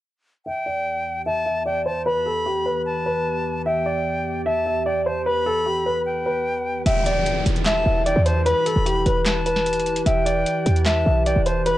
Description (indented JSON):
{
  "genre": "hip hop, trap",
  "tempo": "150 BPM",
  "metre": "4/4",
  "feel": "half-time",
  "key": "E minor",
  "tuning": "A4 = 435 Hz",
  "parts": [
    { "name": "dark baby grand piano", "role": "melody", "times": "0.5-11.8 s", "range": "G4 to E5", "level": "-22 LUFS", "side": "equal", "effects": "low-pass filter, analog delay" },
    { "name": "silver concert flute", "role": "second line", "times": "0.5-11.8 s", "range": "G5 to B5", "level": "-27 LUFS", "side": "left 1 dB", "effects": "analog delay" },
    { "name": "warbly tape-like pad", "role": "sustained chords", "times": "0.8-11.8 s", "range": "E2 to B4", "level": "-29 LUFS", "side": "right 1 dB", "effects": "chorus, built-in reverb, low-pass filter" },
    { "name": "short 808-style bass", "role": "bass", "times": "6.9-11.7 s", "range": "E1 to E2", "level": "-22 LUFS", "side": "equal", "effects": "none" },
    { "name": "booming analog drum machine", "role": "drums", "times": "6.9-11.8 s", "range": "handclaps, hi-hat, snare drum", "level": "-27 LUFS", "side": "equal", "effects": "vintage 12-bit sampler grit" },
    { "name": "downlifter", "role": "sound effects", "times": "6.9-10.1 s", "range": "none", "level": "-32 LUFS", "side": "left 1 dB", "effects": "none" }
  ],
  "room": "digital ambience",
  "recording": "dry, gritty hardware recording, cassette tape",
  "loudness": "-19 LUFS",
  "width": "side -14 dB against mid",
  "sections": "0.5-6.9 A section; 6.9-11.8 B section",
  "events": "filter sweep 0.5-6.9",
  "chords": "0.5 Em"
}